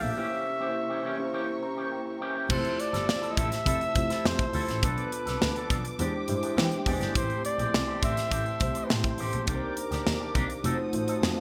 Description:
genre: polished 1980s jazz-funk pop.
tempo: 103 BPM.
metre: 4/4.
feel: straight.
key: F major.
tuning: A4 = 440 Hz.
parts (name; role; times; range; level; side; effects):
breathy flugelhorn; melody; 0.0-10.6 s; Bb4 to E5; -35 LUFS; equal; digital delay.
mellow tine electric piano; accompaniment; 0.0-11.4 s; G#3 to Bb5; -36 LUFS; equal; ensemble chorus.
dark studio string section; sustained chords; 0.0-11.4 s; C3 to E6; -44 LUFS; equal; none.
electric guitar with an envelope filter; riff; 0.0-11.4 s; Eb3 to A4; -39 LUFS; equal; lush chorus.
dark double bass; bass; 0.0-11.3 s; F1 to E3; -35 LUFS; equal; none.
modern studio drum kit; drums; 2.5-11.4 s; crash cymbal, hi-hat, kick drum, snare drum; -32 LUFS; equal; gated reverb.
room: moderate plate reverb, RT60 1.8 s, small room ambience.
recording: bright 1980s-style digital production.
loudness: -29 LUFS.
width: mono.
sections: 0.0-2.5 A section; 2.5-11.4 B section.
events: tine electric piano fill 1.3-2.5, 6.0-7.2.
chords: 0.2 C7b9; 2.5 Fmaj7; 4.8 Bm7b5; 6.0 E7alt; 7.2 Am7; 9.5 Cm9; 10.6 F7b9.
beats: | 0.17 0.75 1.33 1.92 | 2.50 3.08 3.66 4.25 | 4.83 5.41 5.99 6.57 | 7.16 7.74 8.32 8.90 | 9.48 10.06 10.64 11.23.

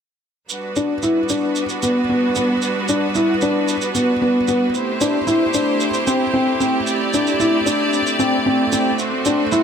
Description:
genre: piano and strings electronica.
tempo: 113 BPM.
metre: 4/4.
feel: straight.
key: unclear.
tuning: A4 = 439 Hz.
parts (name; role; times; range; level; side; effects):
clear studio string section; sustained chords; 0.5-9.6 s; G3 to D5; -20 LUFS; right 2 dB; none.
shaker; drums; 0.5-9.6 s; none; -28 LUFS; right 5 dB; none.
felt-muted upright piano; riff; 0.8-9.6 s; B3 to E4; -18 LUFS; left 1 dB; ping-pong delay.
room: moderate huge ambient reverb, RT60 4.1 s.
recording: none.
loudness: -16 LUFS.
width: side -7 dB against mid.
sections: 0.5-9.6 A section.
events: build-up 0.5-9.6.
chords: 0.5 Gmaj7; 4.7 Am7; 9.0 D7.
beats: | 0.50 1.03 1.56 2.09 | 2.62 3.15 3.68 4.21 | 4.75 5.28 5.81 6.34 | 6.87 7.40 7.93 8.46 | 8.99 9.53.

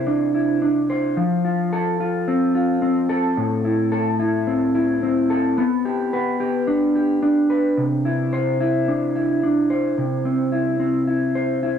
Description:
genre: dream pop.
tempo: 109 BPM.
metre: 4/4.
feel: straight.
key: C major.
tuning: A4 = 442 Hz.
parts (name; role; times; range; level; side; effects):
mellow electric guitar; solo; 0.0-11.8 s; A2 to C5; -18 LUFS; equal; lush chorus, tape echo.
room: light reverb.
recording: dry, gritty hardware recording.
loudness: -18 LUFS.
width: side -8 dB against mid.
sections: 0.0-10.0 A section; 10.0-11.8 B section.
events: none.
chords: 0.0 Cadd9; 1.2 F; 3.4 Am; 5.6 G/B; 7.8 Cadd9; 10.0 C.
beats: 0.07 0.62 | 1.17 1.72 2.27 2.82 | 3.37 3.92 4.47 5.02 | 5.57 6.12 6.67 7.22 | 7.77 8.32 8.88 9.43 | 9.98 10.53 11.08 11.63.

